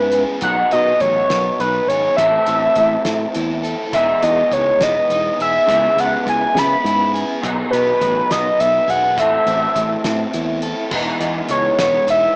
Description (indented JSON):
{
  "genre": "indie rock",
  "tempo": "69 BPM (dotted quarters)",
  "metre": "6/8",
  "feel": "straight",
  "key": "E major",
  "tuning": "A4 = 438 Hz",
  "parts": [
    { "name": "overdriven synth lead", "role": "melody", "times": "0.0-12.4 s", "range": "B4 to B5", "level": "-18 LUFS", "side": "equal", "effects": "distortion" },
    { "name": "crunchy overdriven guitar", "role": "riff", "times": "0.0-12.4 s", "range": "A2 to A4", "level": "-29 LUFS", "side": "equal", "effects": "none" },
    { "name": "electric guitar through a small old amp", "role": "riff", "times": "0.0-12.4 s", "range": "A2 to A4", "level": "-26 LUFS", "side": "equal", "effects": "ensemble chorus, slapback echo" },
    { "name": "picked electric bass", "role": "bass", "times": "0.0-12.3 s", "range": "E1 to C#3", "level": "-28 LUFS", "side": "equal", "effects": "none" },
    { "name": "cloth-damped thuddy drum kit", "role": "drums", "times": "0.1-12.2 s", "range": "crash cymbal, hi-hat, kick drum, snare drum", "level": "-30 LUFS", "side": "equal", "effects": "none" }
  ],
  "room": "light reverb",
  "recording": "rough home demo mix, small speaker sound",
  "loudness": "-17 LUFS",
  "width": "mono",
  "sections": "0.0-10.9 A section; 10.9-12.4 B section",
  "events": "analog synth lead solo 10.9-12.4",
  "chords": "0.4 G#m7; 2.2 Am; 3.9 Emaj7; 5.7 C#m7; 7.4 G#m7; 9.2 Am; 10.9 Emaj7",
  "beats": "| 0.44 1.31 | 2.19 3.06 | 3.93 4.80 | 5.68 6.55 | 7.42 8.30 | 9.17 10.04 | 10.92 11.79"
}